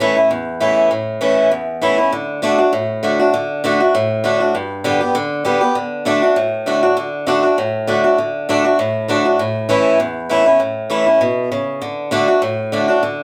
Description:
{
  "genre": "bluegrass",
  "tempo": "198 BPM",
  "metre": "4/4",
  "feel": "swing 54% on 8ths",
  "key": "D major",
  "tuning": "A4 = 438 Hz",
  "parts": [
    { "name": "picked swing-style acoustic guitar", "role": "solo", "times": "0.0-13.2 s", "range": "E2 to G4", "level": "-16 LUFS", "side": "equal", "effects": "none" }
  ],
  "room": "moderate studio reverb, RT60 0.7 s",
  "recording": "none",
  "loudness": "-16 LUFS",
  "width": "mono",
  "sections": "0.0-7.0 A section; 7.0-13.2 A section",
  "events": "none",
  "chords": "0.0 A; 2.1 D; 4.5 G; 5.8 D; 9.4 A; 11.8 D",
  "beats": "0.01 0.31 0.61 | 0.91 1.22 1.52 1.82 | 2.12 2.43 2.73 3.03 | 3.33 3.64 3.94 4.24 | 4.55 4.85 5.15 5.46 | 5.76 6.06 6.37 6.67 | 6.97 7.28 7.58 7.88 | 8.18 8.49 8.79 9.09 | 9.39 9.70 10.00 10.30 | 10.61 10.91 11.21 11.51 | 11.82 12.12 12.42 12.72 | 13.03"
}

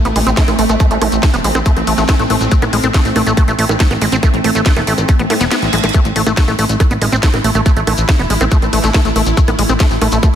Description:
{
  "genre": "psychedelic trance",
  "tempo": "140 BPM",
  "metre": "4/4",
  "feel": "straight",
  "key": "A minor",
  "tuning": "A4 = 441 Hz",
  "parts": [
    { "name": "evolving wavetable pad", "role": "sustained chords", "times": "0.0-10.4 s", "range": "A3 to E4", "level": "-20 LUFS", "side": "right 1 dB", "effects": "phaser, built-in reverb, sidechain pumping" },
    { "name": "overdriven acid bass", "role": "riff", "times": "0.1-10.3 s", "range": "G#3 to C4", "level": "-17 LUFS", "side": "moving between left 5 dB and right 5 dB", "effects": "auto-pan, cassette tape, sidechain pumping, digital delay" },
    { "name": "plucky analog bass", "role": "bass", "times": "0.1-10.2 s", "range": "E1 to A2", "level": "-17 LUFS", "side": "equal", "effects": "none" },
    { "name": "garage drum kit", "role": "drums", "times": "0.1-10.3 s", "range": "bongos, hi-hat, snare drum", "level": "-20 LUFS", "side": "right 2 dB", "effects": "studio reverb" },
    { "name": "shekere", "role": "percussion", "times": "0.1-10.3 s", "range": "none", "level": "-28 LUFS", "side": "left 4 dB", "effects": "none" },
    { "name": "vowel-sweep wobble bass", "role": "second line", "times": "0.4-1.0, 7.2-9.1 s", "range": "E3 to C4", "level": "-32 LUFS", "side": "right 2 dB", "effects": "none" },
    { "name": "electronic kick drum", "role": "drums", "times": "0.4-10.3 s", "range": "none", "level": "-11 LUFS", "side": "equal", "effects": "studio reverb" },
    { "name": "reverse cymbal", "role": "sound effects", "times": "5.3-5.9 s", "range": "none", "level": "-25 LUFS", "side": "right 6 dB", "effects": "none" }
  ],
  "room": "light reverb",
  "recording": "dense, heavily limited modern master",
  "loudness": "-11 LUFS",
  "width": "side -9 dB against mid",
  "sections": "0.0-10.4 A section",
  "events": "reverse cymbal 5.3-5.9; kick drops out 5.5-5.9; drum fill 5.7",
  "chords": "0.0 A5",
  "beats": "0.37 | 0.80 1.23 1.66 2.09 | 2.52 2.94 3.37 3.80 | 4.23 4.66 5.09 5.51 | 5.94 6.37 6.80 7.23 | 7.66 8.09 8.52 8.94 | 9.37 9.80 10.23"
}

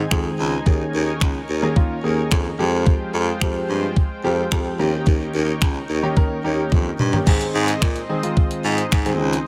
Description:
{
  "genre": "dance-pop",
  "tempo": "109 BPM",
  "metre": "4/4",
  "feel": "straight",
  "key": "Ab major",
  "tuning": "A4 = 440 Hz",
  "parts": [
    { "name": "warm concert grand piano", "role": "accompaniment", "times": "0.0-9.3 s", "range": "Eb3 to Bb4", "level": "-27 LUFS", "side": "equal", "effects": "sidechain pumping" },
    { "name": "lush unison pad", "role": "sustained chords", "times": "0.0-9.5 s", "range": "Ab3 to Ab5", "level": "-32 LUFS", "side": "equal", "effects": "chorus, sidechain pumping" },
    { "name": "raspy baritone saxophone", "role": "bass", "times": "0.0-9.4 s", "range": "Db2 to Bb2", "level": "-25 LUFS", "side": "equal", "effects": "sidechain pumping" },
    { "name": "gated 80s digital drum machine", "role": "drums", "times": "0.1-9.5 s", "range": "crash cymbal, finger snaps, hi-hat, kick drum, toms", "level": "-20 LUFS", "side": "equal", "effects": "gated reverb" }
  ],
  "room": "little or no reverb",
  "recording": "none",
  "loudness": "-20 LUFS",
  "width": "mono",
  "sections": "0.0-7.3 A section; 7.3-9.5 B section",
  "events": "drum fill 6.7-7.3",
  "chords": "0.0 Ab; 0.7 Eb7sus4; 2.6 Fmadd9; 4.8 Eb7; 7.3 Ab",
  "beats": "0.11 | 0.66 1.21 1.76 2.31 | 2.87 3.42 3.97 4.52 | 5.07 5.62 6.17 6.72 | 7.27 7.82 8.37 8.92 | 9.47"
}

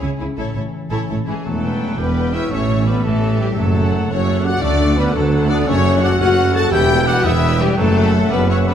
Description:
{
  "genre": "cinematic, heroic adventure film score",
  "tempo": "113 BPM (dotted quarters)",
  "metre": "6/8",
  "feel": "straight",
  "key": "E dorian",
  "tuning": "A4 = 439 Hz",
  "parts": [
    { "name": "rich symphonic violin section", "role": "melody", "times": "0.0-8.7 s", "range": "G4 to A5", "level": "-28 LUFS", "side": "left 3 dB", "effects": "none" },
    { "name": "clear symphonic violin section", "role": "second line", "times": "0.0-8.7 s", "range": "E4 to A5", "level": "-27 LUFS", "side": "left 3 dB", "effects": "none" },
    { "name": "clear symphonic viola section", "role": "accompaniment", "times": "0.0-8.7 s", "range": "E4 to G5", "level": "-28 LUFS", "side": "right 1 dB", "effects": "none" },
    { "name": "concert harp", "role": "arpeggios", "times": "0.0-8.7 s", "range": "E2 to A4", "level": "-27 LUFS", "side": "left 6 dB", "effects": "none" },
    { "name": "rich symphonic cello section", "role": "bass", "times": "0.0-8.7 s", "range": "D2 to C#3", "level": "-22 LUFS", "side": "right 3 dB", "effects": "none" },
    { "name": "rich symphonic double bass section", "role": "bass", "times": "0.0-8.7 s", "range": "E1 to D2", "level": "-22 LUFS", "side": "right 3 dB", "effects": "none" },
    { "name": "bright concert flute", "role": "second line", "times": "1.3-8.7 s", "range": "G5 to A6", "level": "-28 LUFS", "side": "left 1 dB", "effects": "none" },
    { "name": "warm cor anglais", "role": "second line", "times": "1.3-8.7 s", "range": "E3 to F#4", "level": "-28 LUFS", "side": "right 2 dB", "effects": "none" },
    { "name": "dark French horn section", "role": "sustained chords", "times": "1.3-8.7 s", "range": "G3 to A4", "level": "-20 LUFS", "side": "left 4 dB", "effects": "none" },
    { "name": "mellow tuba", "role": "bass", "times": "1.5-8.7 s", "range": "E1 to D2", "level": "-22 LUFS", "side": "right 4 dB", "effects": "none" }
  ],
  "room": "moderate concert hall reverb, RT60 1.9 s",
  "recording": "none",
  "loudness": "-14 LUFS",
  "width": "side -9 dB against mid",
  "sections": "0.0-1.5 A section; 1.5-8.7 B section",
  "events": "none",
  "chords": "0.4 A; 1.5 Em; 2.5 A; 3.6 F#m; 4.6 D; 5.7 F#m; 6.7 Em; 7.8 F#m7",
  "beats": "| 0.38 0.92 | 1.46 1.99 | 2.52 3.05 | 3.58 4.11 | 4.63 5.16 | 5.68 6.21 | 6.73 7.26 | 7.79 8.32"
}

